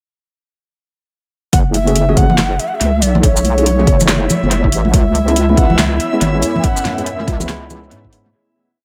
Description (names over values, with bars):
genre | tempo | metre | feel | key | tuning
deep dubstep | 141 BPM | 4/4 | swing 62% on 16ths, half-time | F# minor | A4 = 441 Hz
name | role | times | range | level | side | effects
breathy bright long shakuhachi | melody | 1.5-8.1 s | C#5 to G#5 | -22 LUFS | equal | dub echo
deep dark ambient pad | sustained chords | 3.6-8.3 s | B3 to C#5 | -30 LUFS | equal | none
wobble bass | bass | 1.5-8.3 s | F#1 to G#2 | -18 LUFS | equal | chorus
deep house drum kit | drums | 1.5-8.2 s | handclaps, hi-hat, shaker, snare drum | -21 LUFS | equal | analog delay
electronic kick drum | drums | 1.5-8.1 s | none | -16 LUFS | equal | none
backwards swelling texture | texture | 2.9-8.4 s | E4 to E5 | -28 LUFS | equal | built-in reverb
congas | percussion | 1.7-8.3 s | none | -23 LUFS | equal | dub echo
tine electric piano | stabs | 1.9-8.3 s | G#3 to G#4 | -24 LUFS | equal | medium tremolo, low-pass filter, dub echo
room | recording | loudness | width
moderate spring reverb, RT60 1.6 s | echo-heavy mix | -14 LUFS | mono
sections
1.5-8.3 build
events
build-up 1.5-8.3; fade-out 6.1-8.3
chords
1.5 F#madd9; 4.9 C#m7